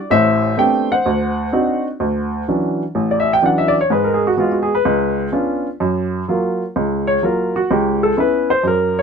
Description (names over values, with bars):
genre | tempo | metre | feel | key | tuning
solo jazz | 126 BPM | 4/4 | swing 68% on 8ths | unclear | A4 = 438 Hz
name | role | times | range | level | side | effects
warm upright piano | solo | 0.0-9.0 s | A1 to G5 | -15 LUFS | equal | none
room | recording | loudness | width
light reverb | close, detailed microphones | -15 LUFS | side -6 dB against mid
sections
0.0-2.0 A section; 2.0-9.0 B section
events
upright piano solo 2.0-9.0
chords
0.1 Am11; 1.1 D7b9; 2.0 Dmaj9; 3.9 G#m7; 4.8 C#7b9; 5.8 F#maj7; 7.7 C#m7b5